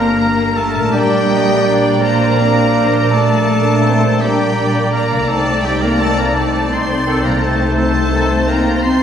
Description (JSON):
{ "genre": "classical", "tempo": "56 BPM (dotted quarters)", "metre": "12/8", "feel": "rubato", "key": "G minor", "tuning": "A4 = 438 Hz", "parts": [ { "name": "warm symphonic violin section", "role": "melody", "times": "0.0-9.0 s", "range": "G5 to C6", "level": "-23 LUFS", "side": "left 3 dB", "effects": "none" }, { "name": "clear oboe", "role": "second line", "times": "0.0-9.0 s", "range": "G4 to C5", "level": "-24 LUFS", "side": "equal", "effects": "none" }, { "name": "mellow clarinet", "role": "second line", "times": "0.0-9.0 s", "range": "D4 to Eb4", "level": "-23 LUFS", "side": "left 3 dB", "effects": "none" }, { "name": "mellow flute section", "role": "second line", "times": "0.0-9.0 s", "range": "Bb5 to A6", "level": "-26 LUFS", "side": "right 2 dB", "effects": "none" }, { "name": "warm symphonic violin section", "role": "second line", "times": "0.0-9.0 s", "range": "A3 to Eb4", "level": "-22 LUFS", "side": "left 1 dB", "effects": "none" }, { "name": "warm symphonic viola section", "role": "accompaniment", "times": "0.0-9.0 s", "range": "Bb4 to Eb5", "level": "-24 LUFS", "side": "equal", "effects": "none" }, { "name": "clear trombone section", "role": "sustained chords", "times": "0.0-8.3 s", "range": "Eb3 to D4", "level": "-27 LUFS", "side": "right 2 dB", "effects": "none" }, { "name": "warm French horn section", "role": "sustained chords", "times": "0.0-9.0 s", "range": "G3 to C4", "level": "-21 LUFS", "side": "left 4 dB", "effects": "none" }, { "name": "concert harp", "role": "arpeggios", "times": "0.0-9.0 s", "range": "G2 to C5", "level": "-27 LUFS", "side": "left 2 dB", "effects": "none" }, { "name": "clear trumpet section", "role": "stabs", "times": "0.0-8.3 s", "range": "A4 to D5", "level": "-21 LUFS", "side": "right 2 dB", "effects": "none" }, { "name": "rich symphonic cello section", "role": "bass", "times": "0.0-9.0 s", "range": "G3 to C4", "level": "-21 LUFS", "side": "right 1 dB", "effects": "none" }, { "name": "warm chamber double bass section", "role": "bass", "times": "0.0-9.0 s", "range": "G1 to C2", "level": "-19 LUFS", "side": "right 3 dB", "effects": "none" } ], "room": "wet scoring stage reverb, RT60 1.5 s", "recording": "heard from further back in the room", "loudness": "-12 LUFS", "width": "side -8 dB against mid", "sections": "0.0-9.0 A section", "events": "none", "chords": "0.0 Gm; 0.9 Gm/Bb; 5.3 Adim/C" }